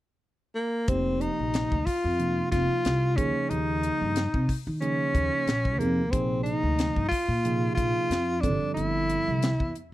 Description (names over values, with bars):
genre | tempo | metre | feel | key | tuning
electric jazz fusion | 91 BPM | 4/4 | swing 54% on 16ths | unclear | A4 = 439 Hz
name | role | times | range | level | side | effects
breathy tenor saxophone | melody | 0.5-9.8 s | Bb3 to F4 | -27 LUFS | left 1 dB | slapback echo
tine electric piano | accompaniment | 0.9-9.5 s | C3 to A4 | -32 LUFS | right 5 dB | phaser
upright bass | bass | 0.9-9.7 s | F1 to Eb3 | -29 LUFS | equal | none
crisp fusion drum kit | drums | 0.9-9.9 s | hi-hat, kick drum, snare drum | -30 LUFS | left 1 dB | none
room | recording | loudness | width
small room ambience | dry, close 1970s-style studio recording | -24 LUFS | side -15 dB against mid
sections
0.9-9.9 A section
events
none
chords
0.0 N.C.; 0.9 F9sus4; 3.2 Eb9sus4; 6.1 Bb9sus4; 8.4 G9sus4